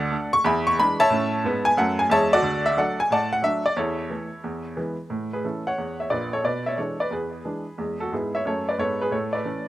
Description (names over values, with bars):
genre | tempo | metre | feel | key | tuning
jazz, stride piano | 180 BPM | 4/4 | swing 65% on 8ths | A major | A4 = 440 Hz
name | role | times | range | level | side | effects
bright baby grand piano | solo | 0.0-9.7 s | Bb1 to C#6 | -21 LUFS | equal | none
room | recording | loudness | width
little or no reverb | recorded outdoors, with no room sound | -21 LUFS | side -15 dB against mid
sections
0.0-5.1 A section; 5.1-9.7 B section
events
none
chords
0.4 E7; 1.1 A; 2.4 D; 3.8 A/E; 4.4 E; 5.1 A; 6.4 E7/B; 7.8 E; 9.1 A